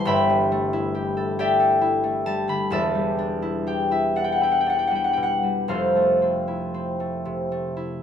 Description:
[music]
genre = classical, solo harp piece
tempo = 38-46 BPM (dotted quarters)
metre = 6/8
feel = rubato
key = unclear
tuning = A4 = 440 Hz
[part]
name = concert harp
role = solo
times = 0.0-8.0 s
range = E1 to C6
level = -20 LUFS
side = left 1 dB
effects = none
[sound]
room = wet stone room reverb, RT60 1.0 s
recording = none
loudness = -20 LUFS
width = side -8 dB against mid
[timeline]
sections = 0.0-8.0 A section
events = none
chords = 0.1 G69; 2.7 Em7; 5.7 Fmaj7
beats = | 0.06 1.38 | 2.72 4.16 | 5.69 7.25

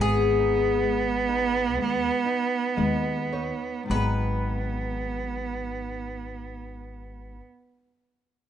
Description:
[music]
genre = fado-style ballad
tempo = 49-73 BPM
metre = 4/4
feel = rubato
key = G# minor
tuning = A4 = 440 Hz
[part]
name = Irish bouzouki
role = melody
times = 0.0-7.4 s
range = G#4 to B4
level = -27 LUFS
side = left 4 dB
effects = plate reverb
[part]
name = rich cello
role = second line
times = 0.0-7.4 s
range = B3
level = -28 LUFS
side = right 4 dB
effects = plate reverb
[part]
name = nylon-string guitar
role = accompaniment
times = 0.0-7.4 s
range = G#2 to D#5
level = -34 LUFS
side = left 2 dB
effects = plate reverb
[part]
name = upright bass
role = bass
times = 0.0-7.4 s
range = G#1 to D#2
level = -30 LUFS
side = equal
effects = none
[sound]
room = light reverb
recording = rough home demo mix, nothing above 10.8 kHz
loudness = -24 LUFS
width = side -10 dB against mid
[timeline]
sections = 0.0-3.9 A section; 3.9-8.5 B section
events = slowing down 0.0-3.9; nylon-string guitar fill 2.3-3.9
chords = 0.0 G#m; 3.9 G#m7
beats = 0.85 1.77 2.79 | 3.91 5.06 6.20 7.33

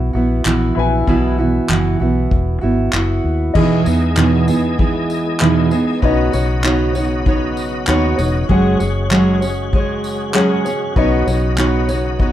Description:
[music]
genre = acoustic pop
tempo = 97 BPM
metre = 4/4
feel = straight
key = E major from 3.6 s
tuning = A4 = 440 Hz
[part]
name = clear upright piano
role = accompaniment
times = 0.0-12.3 s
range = C#4 to G#5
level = -25 LUFS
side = left 9 dB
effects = none
[part]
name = fingerpicked steel-string acoustic guitar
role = accompaniment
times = 0.0-12.3 s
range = E2 to C#5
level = -16 LUFS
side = right 2 dB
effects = none
[part]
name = vintage muted fingered electric bass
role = bass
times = 0.0-12.3 s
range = E1 to E2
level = -19 LUFS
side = left 1 dB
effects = none
[part]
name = unplugged drum kit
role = drums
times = 0.5-12.3 s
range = crash cymbal, handclaps, kick drum, tambourine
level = -20 LUFS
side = left 1 dB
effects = none
[part]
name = tonewheel organ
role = sustained chords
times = 3.6-12.3 s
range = C#3 to D#5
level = -25 LUFS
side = left 3 dB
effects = chorus vibrato, fast rotary speaker
[sound]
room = light reverb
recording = dark, warm production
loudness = -14 LUFS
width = side -12 dB against mid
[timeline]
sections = 0.0-3.6 A section; 3.6-12.3 B section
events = none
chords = 0.0 Bsus4; 3.6 Emaj7; 6.0 Badd9; 8.5 F#sus2; 11.0 Badd9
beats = 0.46 | 1.08 1.70 2.32 2.94 | 3.55 4.17 4.79 5.41 | 6.02 6.64 7.26 7.88 | 8.49 9.11 9.73 10.35 | 10.96 11.58 12.20

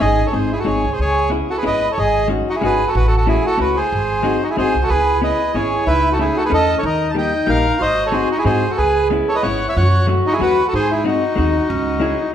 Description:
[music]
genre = musette waltz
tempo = 185 BPM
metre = 3/4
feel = swing 55% on 8ths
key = C# minor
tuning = A4 = 440 Hz
[part]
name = bandoneon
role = melody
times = 0.0-12.3 s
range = D#4 to A5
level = -17 LUFS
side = right 1 dB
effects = none
[part]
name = hollow-body jazz guitar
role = accompaniment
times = 0.0-12.2 s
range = F#3 to A4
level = -22 LUFS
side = left 4 dB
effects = none
[part]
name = upright bass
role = bass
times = 0.0-12.1 s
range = G#1 to G#2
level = -21 LUFS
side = equal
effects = none
[part]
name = mellow clarinet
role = second line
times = 4.9-12.3 s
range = C#4 to G#4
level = -23 LUFS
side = right 1 dB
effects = none
[sound]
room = moderate large studio reverb, RT60 1.4 s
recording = band playing live in one room, lossy compression artefacts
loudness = -15 LUFS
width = side -9 dB against mid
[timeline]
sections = 0.0-12.3 A section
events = none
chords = 0.0 G#sus4; 0.3 G#; 1.0 C#m7; 2.0 G#7sus4; 2.9 F#m7/A; 3.9 G#7; 4.9 C#m7; 5.9 A/C#; 6.8 D#; 7.8 G#7; 8.8 C#m7; 9.8 F#m; 10.7 G#7; 11.7 C#m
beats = | 0.01 0.34 0.66 | 0.99 1.32 1.65 | 1.97 2.30 2.62 | 2.94 3.27 3.59 | 3.91 4.24 4.56 | 4.89 5.21 5.54 | 5.86 6.18 6.51 | 6.83 7.15 7.47 | 7.80 8.12 8.45 | 8.78 9.11 9.43 | 9.76 10.08 10.40 | 10.72 11.05 11.37 | 11.69 12.01 12.34

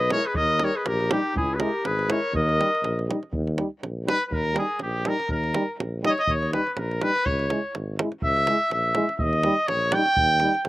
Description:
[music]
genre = balkan folk, Balkan brass band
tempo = 122 BPM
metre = 2/4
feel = swing 56% on 16ths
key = Eb phrygian dominant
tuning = A4 = 440 Hz
[part]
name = clear trumpet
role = melody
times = 0.0-10.7 s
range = G4 to G5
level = -23 LUFS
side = equal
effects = slapback echo
[part]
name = clear clarinet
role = second line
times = 0.0-3.1 s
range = Eb4 to B4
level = -29 LUFS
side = left 2 dB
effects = slapback echo
[part]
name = warm tuba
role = bass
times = 0.0-10.7 s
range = Ab1 to Eb2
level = -28 LUFS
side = equal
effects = none
[part]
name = davul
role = percussion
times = 0.0-10.7 s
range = none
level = -30 LUFS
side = right 2 dB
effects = none
[part]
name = clear euphonium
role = accompaniment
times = 0.1-10.5 s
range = G3 to Ab3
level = -30 LUFS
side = right 3 dB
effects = none
[part]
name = mellow French horn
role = accompaniment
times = 0.1-10.5 s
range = Eb4 to Fb4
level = -31 LUFS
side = left 3 dB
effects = none
[sound]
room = little or no reverb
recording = recorded outdoors, with no room sound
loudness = -22 LUFS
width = side -17 dB against mid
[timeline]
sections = 0.0-3.3 A section; 3.3-10.7 B section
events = trumpet solo 3.3-10.7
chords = 0.4 Eb; 1.4 Dbm; 2.3 Eb; 7.3 Dbm; 9.2 Eb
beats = | 0.36 0.85 | 1.35 1.84 | 2.34 2.83 | 3.33 3.82 | 4.31 4.81 | 5.30 5.79 | 6.28 6.77 | 7.26 7.75 | 8.24 8.73 | 9.21 9.70 | 10.19 10.67

